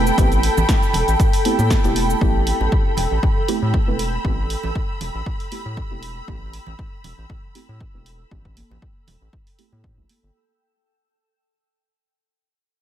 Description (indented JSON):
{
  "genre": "deep house",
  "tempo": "118 BPM",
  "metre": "4/4",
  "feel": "swing 54% on 16ths",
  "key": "A minor",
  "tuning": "A4 = 439 Hz",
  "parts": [
    { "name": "warm analog pad", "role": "sustained chords", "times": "0.0-10.3 s", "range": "A4 to B5", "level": "-26 LUFS", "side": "equal", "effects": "chorus, sidechain pumping" },
    { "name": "deep mellow chord stab", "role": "stabs", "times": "0.0-10.3 s", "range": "A3 to B4", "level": "-25 LUFS", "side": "right 3 dB", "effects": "chorus, sidechain pumping, tape echo" },
    { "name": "round analog bass", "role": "bass", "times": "0.0-10.3 s", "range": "E1 to A2", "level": "-23 LUFS", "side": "equal", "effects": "none" },
    { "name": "granular cloud pad", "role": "texture", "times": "0.0-10.4 s", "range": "A4 to E6", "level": "-28 LUFS", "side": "equal", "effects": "built-in reverb, analog chorus, sidechain pumping" },
    { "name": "rich studio violin section", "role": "texture", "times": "0.0-10.4 s", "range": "G5 to B5", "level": "-35 LUFS", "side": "equal", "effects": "sidechain pumping" },
    { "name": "punchy analog drum machine", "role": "drums", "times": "0.1-10.2 s", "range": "cabasa, hi-hat, snare drum", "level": "-28 LUFS", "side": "right 1 dB", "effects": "none" },
    { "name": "electronic kick drum", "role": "drums", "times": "0.2-9.9 s", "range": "none", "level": "-20 LUFS", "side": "equal", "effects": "none" },
    { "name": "congas", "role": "percussion", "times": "0.6-10.2 s", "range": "none", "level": "-30 LUFS", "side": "right 4 dB", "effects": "none" }
  ],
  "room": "light reverb",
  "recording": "none",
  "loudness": "-17 LUFS",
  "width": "side -11 dB against mid",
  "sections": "0.0-10.3 A section",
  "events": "fade-out 0.0-10.3",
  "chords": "0.0 Am9"
}